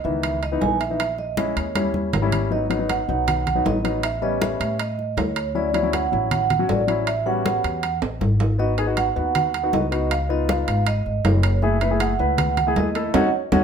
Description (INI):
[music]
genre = Afro-Cuban jazz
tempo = 158 BPM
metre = 4/4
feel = straight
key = unclear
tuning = A4 = 440 Hz
[part]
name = vibraphone with soft mallets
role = melody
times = 0.0-13.6 s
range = C#5 to G#5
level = -24 LUFS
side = right 7 dB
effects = none
[part]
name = warm concert grand piano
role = accompaniment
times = 0.0-13.6 s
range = D#3 to B4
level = -25 LUFS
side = left 6 dB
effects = none
[part]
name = upright bass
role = bass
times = 0.0-13.6 s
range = F#1 to A2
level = -25 LUFS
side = left 1 dB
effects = none
[part]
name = congas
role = percussion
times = 0.0-13.6 s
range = none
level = -27 LUFS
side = left 3 dB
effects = none
[part]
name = timbales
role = percussion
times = 0.2-13.6 s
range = none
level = -27 LUFS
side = right 6 dB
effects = none
[sound]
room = moderate large studio reverb, RT60 0.9 s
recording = minimal, uncompressed stereo recording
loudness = -19 LUFS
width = side -7 dB against mid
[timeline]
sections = 0.0-2.5 A section; 2.5-13.6 B section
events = drum fill 1.8-2.5, 8.0-8.6; band accent 13.1-13.6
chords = 0.0 C#m9; 1.0 A#m7b5; 1.8 D#7b9; 2.5 G#m7; 4.0 A9; 5.6 Dmaj9; 7.1 A13; 8.6 G#m7; 10.1 C#7; 11.6 F#m9